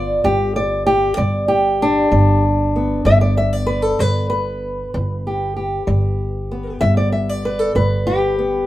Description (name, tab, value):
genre	acoustic country blues, solo or duo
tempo	64 BPM (dotted quarters)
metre	12/8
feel	straight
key	G mixolydian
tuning	A4 = 442 Hz
part	fingerpicked old ladder-braced acoustic guitar	melody	0.0-8.7 s	G2 to E5	-17 LUFS	equal	none
part	upright bass	bass	0.0-8.6 s	G1	-19 LUFS	right 1 dB	none
room	moderate studio reverb, RT60 0.5 s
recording	band playing live in one room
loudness	-15 LUFS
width	side -14 dB against mid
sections	0.0-8.7 A section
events	none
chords	0.0 G7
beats	0.25 1.19 2.12 | 3.06 4.00 4.93 5.87 | 6.80 7.74